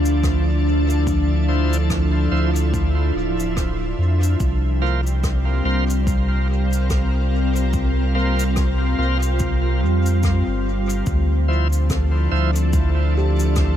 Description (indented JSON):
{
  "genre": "ambient dub",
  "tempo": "72 BPM",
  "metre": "4/4",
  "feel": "swing 58% on 16ths",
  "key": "D minor",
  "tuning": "A4 = 440 Hz",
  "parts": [
    { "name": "soft additive organ-like pad", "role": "sustained chords", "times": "0.0-13.8 s", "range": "F3 to C5", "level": "-23 LUFS", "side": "equal", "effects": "ensemble chorus, built-in reverb" },
    { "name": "warm sub bass", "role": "bass", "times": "0.0-13.8 s", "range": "D1 to F2", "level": "-19 LUFS", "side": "equal", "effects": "none" },
    { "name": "cabasa and rim click", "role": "drums", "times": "0.1-13.8 s", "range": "none", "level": "-35 LUFS", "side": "left 2 dB", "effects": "dub echo" },
    { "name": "electronic kick drum", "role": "drums", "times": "0.2-13.8 s", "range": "none", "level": "-24 LUFS", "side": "equal", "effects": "none" },
    { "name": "bright tonewheel organ", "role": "stabs", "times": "1.5-12.5 s", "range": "F3 to C5", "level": "-30 LUFS", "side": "right 1 dB", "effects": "overdrive, slow rotary speaker, dub echo" },
    { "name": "buzzing kalimba", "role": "arpeggios", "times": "13.2-13.8 s", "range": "G4", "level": "-28 LUFS", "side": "left 3 dB", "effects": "none" }
  ],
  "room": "studio ambience",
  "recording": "none",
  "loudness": "-17 LUFS",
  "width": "side -10 dB against mid",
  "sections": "0.0-11.1 A section; 11.1-13.8 B section",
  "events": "none",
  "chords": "0.0 Dm9; 4.4 C7sus4; 11.1 Dm9",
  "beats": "0.23 | 1.07 1.90 2.73 3.57 | 4.40 5.23 6.07 6.90 | 7.73 8.57 9.40 10.23 | 11.07 11.90 12.73 13.57"
}